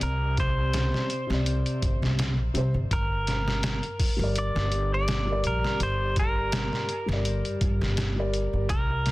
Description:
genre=trip hop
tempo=83 BPM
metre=4/4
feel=swing 55% on 16ths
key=G minor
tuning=A4 = 440 Hz
part: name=clean electric guitar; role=melody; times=0.0-9.1 s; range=Bb4 to D5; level=-31 LUFS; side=equal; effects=tape echo
part: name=felt-muted upright piano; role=accompaniment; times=0.0-8.7 s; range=C3 to D5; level=-32 LUFS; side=left 1 dB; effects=tremolo, tape echo
part: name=upright bass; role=bass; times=0.0-9.1 s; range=G1 to G2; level=-28 LUFS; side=equal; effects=none
part: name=trip hop sampler-style drum kit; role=drums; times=0.0-9.1 s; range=hi-hat, kick drum, snare drum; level=-28 LUFS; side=equal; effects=small room ambience
room=small room ambience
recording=dense, heavily limited modern master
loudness=-24 LUFS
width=side -19 dB against mid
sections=0.0-9.1 A section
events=none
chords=0.0 Csus2; 2.9 Gm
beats=| 0.02 0.74 1.47 2.19 | 2.91 3.63 4.36 5.08 | 5.80 6.53 7.25 7.97 | 8.69

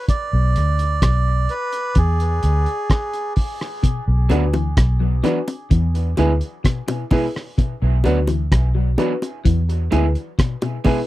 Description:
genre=dub reggae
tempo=64 BPM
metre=4/4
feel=straight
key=B dorian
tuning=A4 = 440 Hz
part: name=melodica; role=melody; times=0.0-3.3 s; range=G#4 to D5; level=-26 LUFS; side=right 2 dB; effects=dub echo
part: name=cloth-damped thuddy drum kit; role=drums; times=0.1-11.1 s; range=hi-hat, kick drum, rim click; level=-18 LUFS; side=equal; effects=none
part: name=vintage muted fingered electric bass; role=bass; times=0.3-10.1 s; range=B1 to E2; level=-17 LUFS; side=equal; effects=none
part: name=semi-hollow electric guitar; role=arpeggios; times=3.8-11.0 s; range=B2 to F#3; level=-27 LUFS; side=left 6 dB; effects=dub echo
part: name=electric guitar through a small old amp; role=accompaniment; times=4.3-11.0 s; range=F#3 to G#4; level=-26 LUFS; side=right 7 dB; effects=tremolo, dub echo
part: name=dark upright piano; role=stabs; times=4.3-11.0 s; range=D4 to B4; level=-26 LUFS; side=left 3 dB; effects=dub echo
part: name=bongos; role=percussion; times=4.3-11.1 s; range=none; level=-26 LUFS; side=equal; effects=dub echo
room=little or no reverb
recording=dry, close 1970s-style studio recording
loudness=-17 LUFS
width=side -16 dB against mid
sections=0.0-11.1 A section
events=break 0.0-3.8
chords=0.1 Bm; 2.0 E; 3.8 Bm; 5.7 E; 7.6 Bm; 9.5 E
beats=| 0.09 1.02 1.96 2.90 | 3.83 4.77 5.71 6.64 | 7.58 8.52 9.45 10.39

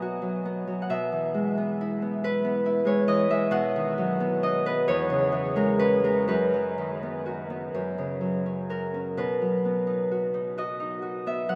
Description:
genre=classical, solo harp piece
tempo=40-47 BPM (dotted quarters)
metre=6/8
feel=rubato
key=B major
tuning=A4 = 437 Hz
part: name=Celtic harp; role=solo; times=0.0-11.6 s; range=E2 to F#5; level=-26 LUFS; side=equal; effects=none
room=wet huge ambient reverb, RT60 8.3 s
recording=in a vast, echoing space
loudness=-27 LUFS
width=mono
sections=0.0-11.6 A section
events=none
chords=0.0 B; 0.9 E/B; 3.5 B; 4.9 C#m/E; 6.3 B/F#; 7.7 F#5; 9.2 B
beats=| 0.89 2.22 | 3.53 4.87 | 6.27 7.72 | 9.18 10.56

